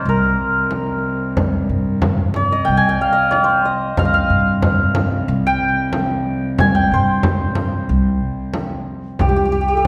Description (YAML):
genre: Persian modal ensemble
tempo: 92 BPM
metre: 4/4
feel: straight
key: C dastgah shur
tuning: A4 = 440 Hz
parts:
  - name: santur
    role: melody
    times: 0.0-9.9 s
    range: G4 to Ab5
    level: -21 LUFS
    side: equal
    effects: none
  - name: warm cello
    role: drone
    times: 0.0-9.3 s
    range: C2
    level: -27 LUFS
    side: equal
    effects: none
  - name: upright bass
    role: bass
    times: 0.1-9.9 s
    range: C2 to G2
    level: -22 LUFS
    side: equal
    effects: none
  - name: frame drum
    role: percussion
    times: 0.7-9.9 s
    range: none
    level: -24 LUFS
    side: equal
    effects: none
  - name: breathy low ney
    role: second line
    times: 9.2-9.9 s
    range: G4 to A4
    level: -25 LUFS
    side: equal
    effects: none
room: wet scoring stage reverb, RT60 1.5 s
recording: recorded in a church or concert hall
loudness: -17 LUFS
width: mono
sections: 0.0-9.2 A section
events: none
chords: none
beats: 0.06 0.71 | 1.37 2.02 2.68 3.33 | 3.98 4.63 5.29 5.94 | 6.59 7.25 7.90 8.55 | 9.20 9.86